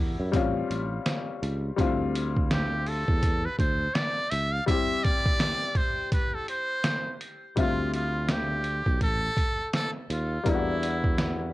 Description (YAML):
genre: hip hop, jazz-hop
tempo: 83 BPM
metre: 4/4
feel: swing 60% on 16ths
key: D minor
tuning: A4 = 440 Hz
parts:
  - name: warm upright piano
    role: accompaniment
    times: 0.0-11.5 s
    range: G3 to E5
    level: -31 LUFS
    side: left 5 dB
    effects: cassette tape
  - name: sustaining fretless electric bass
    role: bass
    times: 0.0-11.5 s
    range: A1 to F#2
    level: -30 LUFS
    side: equal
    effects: none
  - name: trip hop sampler-style drum kit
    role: drums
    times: 0.3-11.4 s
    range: hi-hat, kick drum, snare drum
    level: -28 LUFS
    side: right 1 dB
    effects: cassette tape
  - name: trumpet with metal mute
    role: melody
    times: 2.5-11.5 s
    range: E4 to F5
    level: -30 LUFS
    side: equal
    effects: cassette tape, tape echo
room: moderate booth ambience, RT60 0.2 s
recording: home recording on cassette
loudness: -24 LUFS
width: side -17 dB against mid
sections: 0.0-7.6 A section; 7.6-11.5 B section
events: muted trumpet solo 0.0-7.6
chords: 0.3 A7alt; 1.8 Dm11; 10.5 Em7b5